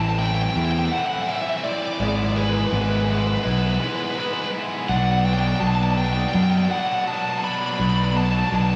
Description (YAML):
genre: post-rock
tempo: 83 BPM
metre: 4/4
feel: straight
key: unclear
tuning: A4 = 440 Hz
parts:
  - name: overdriven semi-hollow guitar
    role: melody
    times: 0.0-8.8 s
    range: B4 to B5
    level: -27 LUFS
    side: equal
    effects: none
  - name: tight distorted guitar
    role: riff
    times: 0.0-8.8 s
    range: G#2 to E4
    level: -28 LUFS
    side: equal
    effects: distortion
  - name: fuzz fingered electric bass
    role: bass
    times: 0.0-8.8 s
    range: G#1 to F#2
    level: -23 LUFS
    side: equal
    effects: overdrive
room: wet large studio reverb, RT60 1.2 s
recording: band playing live in one room, small room ambience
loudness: -22 LUFS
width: mono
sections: 0.0-8.8 A section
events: none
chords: 0.0 Am7; 2.0 E/G#; 4.9 Bm7